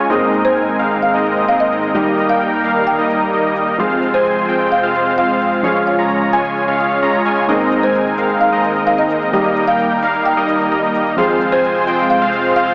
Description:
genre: EDM, festival progressive house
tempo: 130 BPM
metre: 4/4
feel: straight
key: Ab major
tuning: A4 = 440 Hz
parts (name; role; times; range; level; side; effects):
- dark grand piano; accompaniment; 0.0-12.7 s; Ab2 to Ab4; -22 LUFS; equal; none
- lush unison pad; sustained chords; 0.0-12.7 s; Db2 to C5; -24 LUFS; equal; chorus, vintage 12-bit sampler grit
- supersaw chords; riff; 0.0-12.7 s; G3 to Bb5; -14 LUFS; equal; low-pass filter, dub echo
- shaker; drums; 0.1-12.7 s; none; -54 LUFS; equal; none
- folk marimba with soft mallets; melody; 0.4-12.7 s; C5 to Ab5; -19 LUFS; equal; dub echo
room: moderate lush hall reverb, RT60 2.0 s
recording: small speaker sound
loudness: -12 LUFS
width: side -32 dB against mid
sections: 0.0-12.7 A section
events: filter sweep on analog synth pad 0.0-12.7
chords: 0.1 Abadd9; 1.9 Eb; 3.8 Fm; 5.6 Db; 7.5 Abadd9; 9.3 Eb; 11.2 Fm

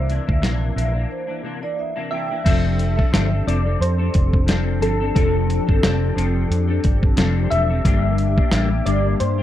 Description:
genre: indie pop, bedroom pop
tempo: 89 BPM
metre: 4/4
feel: swing 55% on 16ths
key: F major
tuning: A4 = 442 Hz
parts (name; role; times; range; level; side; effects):
- soft electric-piano-like synth keys; melody; 0.0-9.4 s; A4 to E5; -25 LUFS; left 2 dB; ensemble chorus, tape echo
- vibraphone with soft mallets; second line; 0.0-2.3 s; C5 to G5; -30 LUFS; right 5 dB; lush chorus, tape echo
- semi-hollow electric guitar; accompaniment; 0.0-9.4 s; C3 to A4; -25 LUFS; left 4 dB; ensemble chorus, vibrato effect
- vintage muted fingered electric bass; bass; 0.0-9.4 s; E1 to G2; -20 LUFS; equal; none
- dusty soul sampler-style drum kit; drums; 0.1-9.4 s; crash cymbal, hi-hat, kick drum, snare drum; -19 LUFS; equal; none
- hollow soft pad; sustained chords; 2.5-9.4 s; F3 to A4; -28 LUFS; right 1 dB; chorus
room: little or no reverb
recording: dry, close 1970s-style studio recording, faint mains hum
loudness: -17 LUFS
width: side -12 dB against mid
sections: 0.0-2.5 A section; 2.5-9.4 B section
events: break 1.1-2.5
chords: 0.0 C9; 2.5 F6; 7.9 Gm

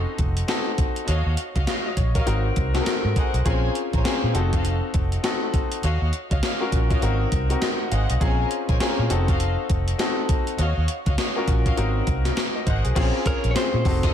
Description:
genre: R&B, new jack swing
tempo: 101 BPM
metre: 4/4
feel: swing 61% on 16ths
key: Bb minor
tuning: A4 = 440 Hz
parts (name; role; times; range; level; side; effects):
- clear concert grand piano; accompaniment; 0.0-14.1 s; C4 to Gb5; -27 LUFS; left 3 dB; slapback echo
- vintage muted fingered electric bass; bass; 0.0-14.1 s; F1 to Bb2; -23 LUFS; equal; none
- gated 80s digital drum machine; drums; 0.2-14.1 s; crash cymbal, hi-hat, kick drum, snare drum; -24 LUFS; equal; gated reverb, gated reverb snare
- warm studio string section; stabs; 1.1-14.1 s; F4 to Ab5; -31 LUFS; left 1 dB; slapback echo, ping-pong delay
- direct-recorded clean electric guitar; melody; 13.3-14.1 s; Bb4 to Db5; -27 LUFS; equal; slapback echo
room: light reverb, digital ambience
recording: none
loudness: -20 LUFS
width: side -9 dB against mid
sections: 0.0-13.0 A section; 13.0-14.1 B section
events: none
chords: 0.0 F7b9; 1.1 Ebm9; 2.3 Ab7; 3.5 Bbm9; 4.3 F7b9; 5.8 Ebm9; 7.0 Ab7; 8.2 Bbm9; 9.1 F7b9; 10.6 Ebm9; 11.8 Ab7; 13.0 Bbm9

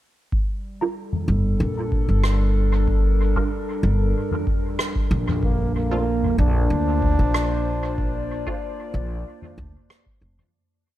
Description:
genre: ambient dub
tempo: 94 BPM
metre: 4/4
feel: straight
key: G minor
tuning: A4 = 440 Hz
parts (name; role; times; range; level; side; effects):
- warbly tape-like pad; sustained chords; 0.7-10.5 s; G3 to D5; -29 LUFS; equal; chorus, built-in reverb
- electronic kick drum; drums; 0.3-10.2 s; none; -25 LUFS; equal; none
- filtered dub chord stab; stabs; 0.8-8.6 s; G3 to Bb4; -29 LUFS; right 3 dB; phaser, ensemble chorus, cassette tape, dub echo
- soft-mallet drum kit; drums; 1.1-10.5 s; rim click, toms; -29 LUFS; equal; dub echo
- upright bass; bass; 1.3-10.4 s; F1 to D2; -21 LUFS; equal; none
- dark trombone; melody; 5.4-9.9 s; Bb3 to D4; -27 LUFS; equal; dub echo
room: light reverb, small room ambience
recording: none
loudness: -20 LUFS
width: side -14 dB against mid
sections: 0.3-10.5 groove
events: fade-out 7.1-10.5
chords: 0.3 Gm; 5.4 Bbmaj9

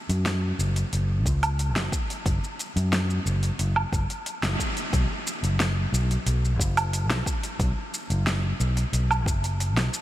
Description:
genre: sunset chillout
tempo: 90 BPM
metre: 4/4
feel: straight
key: unclear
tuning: A4 = 443 Hz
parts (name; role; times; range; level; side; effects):
- fingered electric bass; bass; 0.1-9.9 s; F#1 to F#2; -24 LUFS; equal; none
- deep house drum kit; drums; 0.1-10.0 s; hi-hat, shaker, snare drum, woodblock; -28 LUFS; right 1 dB; none
- electronic kick drum; drums; 1.3-9.4 s; none; -28 LUFS; equal; none
room: light reverb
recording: none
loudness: -23 LUFS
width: side -14 dB against mid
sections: 0.0-4.9 A section; 4.9-10.0 B section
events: band accent 4.4-4.8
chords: none

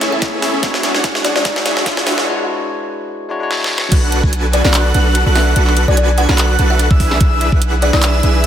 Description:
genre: future bass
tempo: 146 BPM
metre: 4/4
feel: swing 54% on 16ths, half-time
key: B dorian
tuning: A4 = 440 Hz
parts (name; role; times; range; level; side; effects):
- kalimba; melody; 0.0-8.0 s; D5 to F#5; -22 LUFS; left 4 dB; sidechain pumping, tape echo
- bell-like tine electric piano; accompaniment; 0.0-3.9 s; G#3 to G#5; -22 LUFS; left 3 dB; sidechain pumping, digital delay
- dense compressed supersaw; riff; 0.0-8.5 s; C#4 to G#5; -18 LUFS; right 2 dB; sidechain pumping
- warm 808-style bass; bass; 0.0-8.5 s; A1 to A2; -15 LUFS; equal; sidechain pumping, high-pass filter
- dubstep drum kit; drums; 0.0-8.5 s; crash cymbal, handclaps, hi-hat, snare drum; -19 LUFS; right 1 dB; high-pass filter on snare, high-pass filter on hats, high-pass filter on cymbals, high-pass filter on room
- riser; sound effects; 0.0-2.3 s; none; -25 LUFS; left 1 dB; none
- electronic kick drum; drums; 0.2-4.3, 6.9-7.6 s; none; -14 LUFS; equal; none
- airy dreamy lead; arpeggios; 3.9-8.5 s; E6 to G#6; -22 LUFS; equal; chorus, phaser, cassette tape, sidechain pumping, digital delay
room: light reverb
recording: high-pass filter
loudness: -12 LUFS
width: side -10 dB against mid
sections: 0.0-3.9 A section; 3.9-8.5 B section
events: build-up 0.0-3.9; drum fill 0.0-2.3, 3.5-3.9; riser 0.0-2.3; filter sweep on kalimba 0.0-3.9; break 2.3-3.9; drop 3.9-8.5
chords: 0.0 Amaj7; 0.6 Dmaj9#11; 3.9 Bm7; 7.0 E7/B

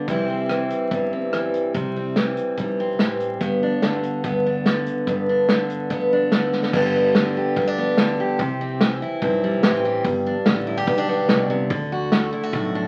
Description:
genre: honky-tonk and classic country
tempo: 145 BPM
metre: 4/4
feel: straight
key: G major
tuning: A4 = 440 Hz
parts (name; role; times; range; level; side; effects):
- picked steel-string acoustic guitar; accompaniment; 0.0-12.9 s; G2 to G4; -23 LUFS; equal; none
- upright bass; bass; 0.1-12.9 s; G1 to D2; -33 LUFS; equal; none
- natural country drum kit; drums; 0.1-12.6 s; crash cymbal, hi-hat, kick drum, rim click, snare drum; -24 LUFS; equal; none
room: wet studio ambience, RT60 0.5 s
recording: very old 78 rpm record, vinyl crackle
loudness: -21 LUFS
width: mono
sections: 0.0-6.7 A section; 6.7-12.9 B section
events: drum fill 6.5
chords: 0.1 C; 3.4 G; 8.4 C; 10.1 G; 11.7 D

